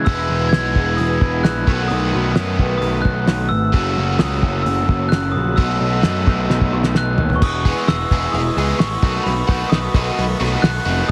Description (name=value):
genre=indie rock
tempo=131 BPM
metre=4/4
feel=straight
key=unclear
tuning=A4 = 440 Hz
part: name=glockenspiel with rubber mallets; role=melody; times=0.0-11.1 s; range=B5 to G#6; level=-26 LUFS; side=equal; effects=none
part: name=biting overdriven guitar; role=riff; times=0.0-11.1 s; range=E2 to G#4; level=-26 LUFS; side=equal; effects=subtle chorus, digital delay
part: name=raw garage guitar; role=riff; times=0.0-11.1 s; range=E2 to F#4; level=-29 LUFS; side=equal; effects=overdrive
part: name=soft string machine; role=sustained chords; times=0.1-11.1 s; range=E4 to A5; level=-34 LUFS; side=equal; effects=none
part: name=overdriven picked electric bass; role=bass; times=0.1-11.1 s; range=E1 to F#2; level=-23 LUFS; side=equal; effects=none
part: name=cloth-damped thuddy drum kit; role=drums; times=0.1-11.1 s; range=crash cymbal, hi-hat, kick drum, snare drum, toms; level=-20 LUFS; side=equal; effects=none
room=light reverb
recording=heavily compressed radio sound, multiband compression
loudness=-18 LUFS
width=mono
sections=0.0-7.4 A section; 7.4-11.1 B section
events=drum fill 6.5-7.4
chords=0.1 Emaj7; 1.7 B7; 3.7 F#m7; 5.6 B7sus4; 7.4 Emaj7; 9.0 B7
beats=| 0.07 0.53 0.99 1.45 | 1.91 2.37 2.83 3.29 | 3.75 4.20 4.66 5.12 | 5.58 6.04 6.50 6.96 | 7.42 7.88 8.34 8.79 | 9.25 9.71 10.17 10.63 | 11.09